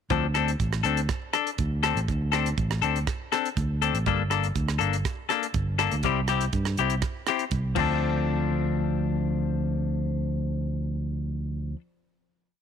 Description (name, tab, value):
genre	highlife guitar band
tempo	122 BPM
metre	4/4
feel	straight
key	D minor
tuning	A4 = 440 Hz
part	semi-hollow electric guitar	accompaniment	0.1-11.8 s	F3 to A4	-28 LUFS	left 13 dB	none
part	fingered electric bass	bass	0.1-11.7 s	G1 to G2	-27 LUFS	right 1 dB	none
part	tight funk drum kit	drums	0.1-7.9 s	crash cymbal, hi-hat, kick drum, rim click	-31 LUFS	right 5 dB	none
room	small room reverb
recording	1960s-style stereo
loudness	-24 LUFS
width	side -8 dB against mid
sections	0.1-8.0 groove; 8.0-12.0 final hit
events	none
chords	0.1 D7(no3); 4.1 Gmadd9; 6.0 C; 7.8 Dm7